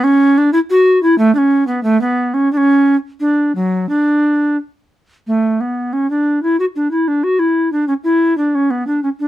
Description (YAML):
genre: classical, baroque-style fantasia for unaccompanied recorder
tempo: 85-93 BPM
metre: 4/4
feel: rubato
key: D major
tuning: A4 = 440 Hz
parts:
  - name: hollow bass recorder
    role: solo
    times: 0.0-9.3 s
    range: F#3 to F#4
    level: -12 LUFS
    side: equal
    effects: none
room: little or no reverb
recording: close, detailed microphones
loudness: -12 LUFS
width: side -14 dB against mid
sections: 0.0-5.3 A section; 5.3-9.3 A section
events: none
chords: none